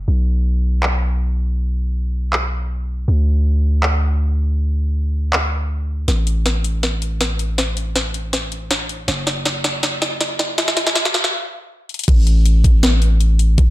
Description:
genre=future bass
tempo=160 BPM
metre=4/4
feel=half-time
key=unclear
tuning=A4 = 439 Hz
part: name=long sustained 808-style bass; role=bass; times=0.0-13.7 s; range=F#1 to D2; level=-17 LUFS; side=equal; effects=sidechain pumping
part: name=trap drum kit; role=drums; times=0.8-13.7 s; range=crash cymbal, handclaps, hi-hat, snare drum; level=-19 LUFS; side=equal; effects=high-pass filter on snare, low-pass filter on snare, studio reverb, high-pass filter on hats, low-pass filter on hats, high-pass filter on cymbals, low-pass filter on cymbals
part: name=electronic kick drum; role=drums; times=12.1-13.7 s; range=none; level=-12 LUFS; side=equal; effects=studio reverb
room=light reverb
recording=dark, warm production, high-pass filter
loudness=-16 LUFS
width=side -16 dB against mid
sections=0.0-6.1 A section; 6.1-12.1 B section; 12.1-13.7 C section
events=build-up 6.1-12.1; drum fill 6.1-11.3, 11.9; filter sweep 6.1-12.1; stop 11.3-12.1; drop 12.1-13.7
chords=none

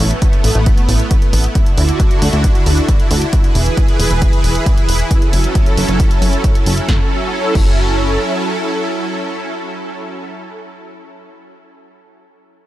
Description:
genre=uplifting trance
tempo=135 BPM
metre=4/4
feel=straight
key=F# minor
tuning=A4 = 440 Hz
part: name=supersaw pad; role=sustained chords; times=0.0-10.3 s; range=D3 to B4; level=-18 LUFS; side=right 1 dB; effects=ensemble chorus, sidechain pumping
part: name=plucky analog bass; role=bass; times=0.0-8.2 s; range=E1 to D2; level=-15 LUFS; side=equal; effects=sidechain pumping
part: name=punchy analog drum machine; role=drums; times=0.0-7.7 s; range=crash cymbal, hi-hat, snare drum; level=-24 LUFS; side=right 1 dB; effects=none
part: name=electronic kick drum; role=drums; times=0.2-7.7 s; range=none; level=-14 LUFS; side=equal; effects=none
room=light reverb, digital ambience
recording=none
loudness=-12 LUFS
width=side -14 dB against mid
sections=0.0-6.9 A section; 6.9-10.4 B section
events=none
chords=0.0 Asus2; 1.6 Dadd9; 3.3 E; 5.1 F#m7

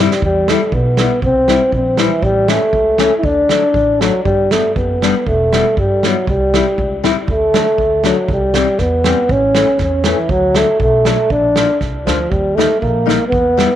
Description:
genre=alpine folk, alpine dance band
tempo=119 BPM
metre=2/4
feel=straight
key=unclear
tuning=A4 = 437 Hz
part: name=warm euphonium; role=melody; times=0.0-13.8 s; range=E3 to E4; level=-14 LUFS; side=equal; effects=tape echo
part: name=fingerpicked steel-string acoustic guitar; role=accompaniment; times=0.0-13.7 s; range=E3 to E4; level=-19 LUFS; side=left 11 dB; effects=none
part: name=upright bass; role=bass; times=0.0-13.6 s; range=E1 to G2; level=-21 LUFS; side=equal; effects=tube saturation
part: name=natural country drum kit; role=drums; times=0.1-13.7 s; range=kick drum, snare drum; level=-20 LUFS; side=right 3 dB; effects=none
room=moderate spring reverb, RT60 2.1 s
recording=1960s-style stereo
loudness=-12 LUFS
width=side -11 dB against mid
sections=0.2-13.8 A section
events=drum fill 0.0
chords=0.2 Em; 1.2 C; 2.2 A; 3.2 D; 4.3 G; 5.3 Em; 6.3 C; 7.3 D; 8.3 C; 9.3 A; 10.3 D; 11.3 Bb; 12.3 Eb

